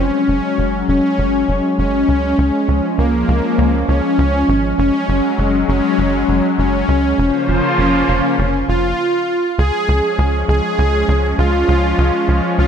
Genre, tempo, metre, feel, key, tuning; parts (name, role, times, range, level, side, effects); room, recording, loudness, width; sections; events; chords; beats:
synthwave; 100 BPM; 4/4; straight; Db major; A4 = 442 Hz
soft supersaw; melody; 0.0-12.7 s; Bb3 to Ab4; -17 LUFS; left 1 dB; ping-pong delay
warm analog pad; sustained chords; 0.0-12.7 s; Db3 to C5; -20 LUFS; equal; chorus, vintage 12-bit sampler grit
tight sequencer bass; bass; 0.0-12.7 s; F1 to Db2; -17 LUFS; equal; tube saturation
moderate lush hall reverb, RT60 2.0 s, digital ambience; bright 1980s-style digital production; -13 LUFS; side -8 dB against mid
0.0-9.6 A section; 9.6-12.7 B section
0.0 Gbsus2; 2.4 Db; 4.8 Gbsus2; 7.2 Bbmadd9/F; 9.6 Db
0.59 1.19 1.79 | 2.39 2.99 3.59 4.19 | 4.79 5.39 5.99 6.59 | 7.19 7.79 8.39 8.99 | 9.59 10.19 10.79 11.39 | 11.99 12.59